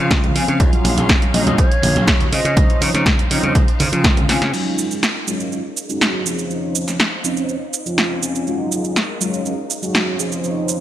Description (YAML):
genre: filtered disco house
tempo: 122 BPM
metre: 4/4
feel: straight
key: Eb dorian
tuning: A4 = 439 Hz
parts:
  - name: mellow synth brass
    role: accompaniment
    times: 0.0-10.8 s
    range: F3 to Ab4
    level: -22 LUFS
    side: equal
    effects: chorus, phaser, cassette tape, sidechain pumping, low-pass filter
  - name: rich studio string section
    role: sustained chords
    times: 0.0-10.8 s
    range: Db4 to F5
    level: -30 LUFS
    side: equal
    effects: sidechain pumping, low-pass filter
  - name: slap bass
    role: bass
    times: 0.0-4.5 s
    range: Bb1 to Db3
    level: -20 LUFS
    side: equal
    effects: sidechain pumping, low-pass filter
  - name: electronic kick drum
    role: drums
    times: 0.1-4.1 s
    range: none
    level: -16 LUFS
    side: equal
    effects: none
  - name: punchy analog drum machine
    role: drums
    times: 0.1-10.8 s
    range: crash cymbal, hi-hat, shaker, snare drum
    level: -20 LUFS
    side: right 1 dB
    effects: sidechain pumping on hats, sidechain pumping on cymbals, sidechain pumping on perc
  - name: tambourine and congas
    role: percussion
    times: 0.1-4.5 s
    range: none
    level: -27 LUFS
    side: right 3 dB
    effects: none
  - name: hollow concert flute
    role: melody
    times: 1.3-2.8 s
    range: Db5 to Eb5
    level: -24 LUFS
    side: equal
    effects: sidechain pumping, low-pass filter, ping-pong delay
room: light reverb, digital ambience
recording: bright 1980s-style digital production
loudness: -15 LUFS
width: side -12 dB against mid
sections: 0.0-4.5 A section; 4.5-10.8 B section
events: drum fill 4.3; filter sweep 4.5-10.8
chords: 0.0 Dbmaj9; 0.6 Ebm11; 2.3 Dbmaj9; 4.5 Ebm11; 6.3 Dbmaj9; 8.5 Ebm11; 10.2 Dbmaj9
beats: 0.11 | 0.60 1.09 1.58 2.08 | 2.57 3.06 3.55 4.04 | 4.54 5.03 5.52 6.01 | 6.50 6.99 7.49 7.98 | 8.47 8.96 9.45 9.95 | 10.44